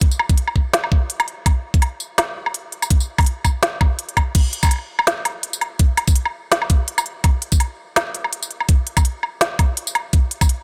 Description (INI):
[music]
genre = drum and bass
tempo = 166 BPM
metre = 4/4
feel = swing 55% on 16ths, half-time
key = none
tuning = none
[part]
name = electronic kick drum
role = drums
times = 0.0-10.5 s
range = none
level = -18 LUFS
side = equal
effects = none
[part]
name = organic electronic drum kit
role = drums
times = 0.0-10.6 s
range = crash cymbal, hi-hat, snare drum, tambourine, woodblock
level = -22 LUFS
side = equal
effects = overdrive
[sound]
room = little or no reverb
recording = none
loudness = -19 LUFS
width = mono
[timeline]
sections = 0.0-4.4 A section; 4.4-10.6 A section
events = drop 0.0-4.4, 4.4-10.6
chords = none